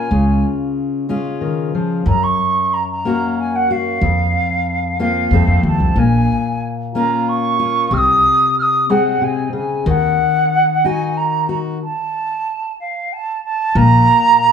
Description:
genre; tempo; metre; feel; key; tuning
acoustic folk duo or small band; 92 BPM; 3/4; straight; unclear; A4 = 440 Hz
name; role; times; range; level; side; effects
wooden flute; melody; 0.0-14.5 s; F5 to F6; -16 LUFS; right 2 dB; none
fingerpicked steel-string acoustic guitar; accompaniment; 0.0-14.5 s; F2 to A4; -19 LUFS; left 4 dB; none
upright bass; bass; 0.1-10.2, 13.8-14.1 s; Bb1 to Gb2; -16 LUFS; equal; none
room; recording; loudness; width
moderate large studio reverb, RT60 1.1 s; band playing live in one room; -14 LUFS; side -7 dB against mid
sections
0.0-13.8 A section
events
stop 11.8-13.8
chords
0.1 Db; 2.1 Gb; 4.0 Fsus4; 5.3 F; 6.0 Bbm; 7.9 Ab/C; 9.9 Ebm; 11.8 N.C.

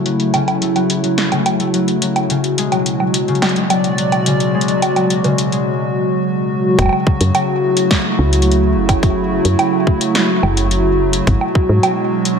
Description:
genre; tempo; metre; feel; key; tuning
IDM; 107 BPM; 4/4; straight; F# minor; A4 = 439 Hz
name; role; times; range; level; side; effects
hollow soft pad; sustained chords; 0.0-12.4 s; B2 to D5; -16 LUFS; right 1 dB; chorus
concert harp; arpeggios; 0.0-6.8 s; C#3 to A3; -19 LUFS; left 4 dB; vintage 12-bit sampler grit, low-pass filter, tape echo
electro analog drum machine; drums; 0.1-12.4 s; bongos, hi-hat, snare drum; -19 LUFS; right 2 dB; low-pass filter on hats, low-pass filter on perc, low-pass filter on snare, low-pass filter on room, tape echo
woody FM bass; bass; 6.8-11.8 s; F#1 to G#2; -16 LUFS; equal; none
electronic kick drum; drums; 6.8-11.7 s; none; -15 LUFS; equal; none
room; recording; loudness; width
moderate lush hall reverb, RT60 1.9 s, digital ambience; none; -13 LUFS; side -6 dB against mid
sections
0.0-6.8 A section; 6.8-12.4 B section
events
filter sweep on drum 0.0-6.8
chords
0.0 F#m7; 2.3 G#m7b5; 6.8 F#m7; 11.3 G#m7b5

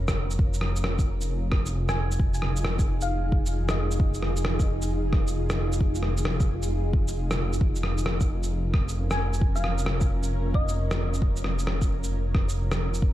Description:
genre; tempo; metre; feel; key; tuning
future garage; 133 BPM; 4/4; swing 65% on 16ths; F minor; A4 = 440 Hz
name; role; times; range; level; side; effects
granular cloud pad; sustained chords; 0.0-13.1 s; Db4 to Bb4; -34 LUFS; equal; built-in reverb, sidechain pumping
swelling detuned saw bass; bass; 0.0-13.1 s; F1; -27 LUFS; equal; sidechain pumping
electronic kick drum; drums; 0.1-13.1 s; none; -24 LUFS; equal; none
electronic rim click and shaker; drums; 0.1-13.0 s; none; -32 LUFS; equal; none
thumb-piano-like synth pluck; melody; 1.9-4.0, 9.1-10.9 s; Eb5 to Ab5; -36 LUFS; left 1 dB; wide subtle chorus, analog delay
room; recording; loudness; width
digital ambience; dark, warm production; -23 LUFS; side -14 dB against mid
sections
0.0-13.1 A section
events
none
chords
0.4 Fm7; 7.6 Db6/F

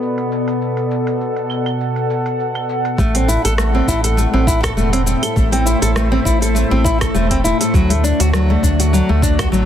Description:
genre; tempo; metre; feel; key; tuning
organic downtempo; 101 BPM; 4/4; swing 55% on 16ths; A dorian; A4 = 444 Hz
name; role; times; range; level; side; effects
warbly tape-like pad; sustained chords; 0.0-9.7 s; A2 to A5; -20 LUFS; left 1 dB; chorus, built-in reverb, sidechain pumping
organic electronic drum kit; drums; 0.0-9.7 s; cabasa, claves, hi-hat, rim click; -24 LUFS; equal; low-pass filter on perc, low-pass filter on hats, soft clipping on snare, low-pass filter on snare, low-pass filter on room
nylon-string guitar; arpeggios; 3.0-9.7 s; F#3 to A4; -18 LUFS; left 1 dB; ping-pong delay
round analog bass; bass; 3.0-9.7 s; E1 to D2; -17 LUFS; equal; tube saturation, sidechain pumping
electronic kick drum; drums; 3.0-9.5 s; none; -19 LUFS; equal; none
room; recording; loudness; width
light reverb; dense, heavily limited modern master; -14 LUFS; side -10 dB against mid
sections
0.0-3.0 A section; 3.0-9.7 B section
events
filter sweep on ambient pad 0.0-3.0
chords
0.0 Bm7; 3.0 Am; 7.7 D

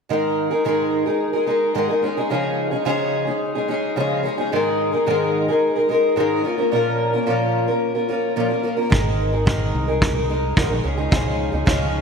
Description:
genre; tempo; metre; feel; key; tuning
acoustic pop; 109 BPM; 4/4; straight; unclear; A4 = 439 Hz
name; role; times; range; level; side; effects
fingerpicked acoustic archtop guitar; accompaniment; 0.1-12.0 s; Ab2 to Bb4; -19 LUFS; equal; double-tracked left and right
mellow fretless electric bass; bass; 8.9-12.0 s; Ab1 to Db2; -24 LUFS; equal; ensemble chorus
kick drum; drums; 8.9-11.8 s; none; -20 LUFS; right 1 dB; none
room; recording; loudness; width
wet lush hall reverb, RT60 2.1 s; bright 1980s-style digital production; -18 LUFS; side -5 dB against mid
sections
0.1-12.0 A section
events
none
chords
0.1 Absus2; 2.0 Dbadd9; 4.5 Absus2; 6.4 Bbm; 8.9 Absus2; 10.9 Dbadd9

